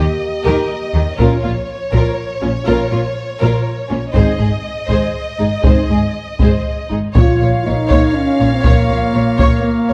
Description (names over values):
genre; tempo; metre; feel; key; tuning
cinematic, epic orchestral film score; 121 BPM; 3/4; straight; Bb dorian; A4 = 440 Hz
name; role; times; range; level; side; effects
warm symphonic violin section; melody; 0.0-9.9 s; Db5 to F5; -27 LUFS; equal; none
warm symphonic violin section; second line; 0.0-9.9 s; Db4 to Db5; -26 LUFS; equal; none
warm symphonic viola section; accompaniment; 0.0-9.9 s; F4 to Db5; -26 LUFS; equal; none
mellow French horn section; sustained chords; 0.0-9.9 s; Bb3 to G4; -21 LUFS; equal; none
rich symphonic double bass section; bass; 0.0-9.9 s; Ab1 to Eb2; -22 LUFS; equal; none
warm symphonic cello section; bass; 0.0-9.9 s; Ab2 to Eb3; -22 LUFS; equal; none
solo taiko drums; drums; 1.2-9.8 s; none; -19 LUFS; equal; none
clear woodwind section; sustained chords; 7.2-9.9 s; Bb3 to Db5; -28 LUFS; equal; none
timpani; percussion; 7.2-7.9 s; Bb2; -25 LUFS; equal; none
room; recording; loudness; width
moderate scoring stage reverb, RT60 1.7 s; dark, warm production; -15 LUFS; mono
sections
0.0-7.2 A section; 7.2-9.9 B section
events
build-up 0.0-7.2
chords
0.0 Eb; 1.2 Bbm; 4.1 Ab; 7.2 Bbm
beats
0.21 0.70 | 1.19 1.68 2.17 | 2.66 3.15 3.65 | 4.14 4.64 5.14 | 5.64 6.15 6.65 | 7.16 7.66 8.15 | 8.65 9.14 9.64